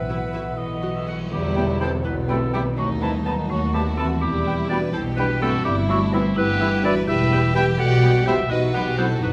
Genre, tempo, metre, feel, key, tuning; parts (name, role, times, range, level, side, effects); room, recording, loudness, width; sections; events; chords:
cinematic, playful, whimsical film cue; 83 BPM (dotted quarters); 6/8; straight; E minor; A4 = 440 Hz
marimba with medium mallets; melody; 0.0-9.3 s; F#3 to B4; -30 LUFS; equal
clear clarinet; second line; 0.0-9.3 s; D#4 to G5; -29 LUFS; equal
mellow cor anglais; second line; 0.0-9.1 s; D#5 to A5; -35 LUFS; equal
mellow hollow flute section; second line; 0.0-9.0 s; F#5 to B5; -38 LUFS; equal
warm chamber violin section; second line; 0.0-9.3 s; B3 to B4; -34 LUFS; equal
dark French horn section; sustained chords; 0.0-9.3 s; D#3 to G4; -31 LUFS; equal
concert harp; arpeggios; 0.0-9.3 s; E2 to E5; -35 LUFS; equal
dark chamber double bass section; bass; 0.0-9.3 s; E1 to D#2; -29 LUFS; equal
warm chamber cello section; bass; 0.0-9.3 s; D#2 to E3; -28 LUFS; equal
warm chamber violin section; melody; 0.1-9.3 s; B3 to E5; -35 LUFS; equal
warm studio viola section; accompaniment; 0.1-9.1 s; E3 to F#4; -35 LUFS; equal
tam-tam; percussion; 1.3-3.2 s; -38 LUFS; equal
wet recital hall reverb, RT60 1.6 s; -21 LUFS; mono
0.0-1.3 A section; 1.3-9.3 B section
band accent 1.3-1.8
0.0 Bsus4; 0.6 B; 1.3 Em; 2.8 B7/D#; 4.2 Em; 5.7 Em/G; 7.1 Em; 8.5 B5